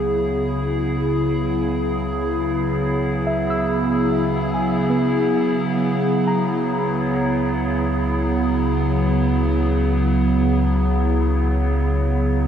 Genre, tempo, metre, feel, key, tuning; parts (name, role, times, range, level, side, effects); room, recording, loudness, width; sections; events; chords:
ambient; free time; C# dorian; A4 = 440 Hz
warbly tape-like pad; sustained chords; 0.0-12.5 s; C#3 to G#4; -19 LUFS; equal; chorus, built-in reverb, phaser
muted felt-like synth keys; arpeggios; 0.0-12.5 s; B3 to E6; -27 LUFS; equal; chorus, tape echo
deep rumbling drone; bass; 0.0-12.5 s; C#2; -24 LUFS; left 1 dB; built-in reverb
moderate huge ambient reverb, RT60 8.9 s; nothing above 10.9 kHz; -18 LUFS; side -8 dB against mid
0.0-12.5 A section
fade-in on synth keys 0.0-12.5; fade-in on synth drone 0.0-12.5
0.0 C#m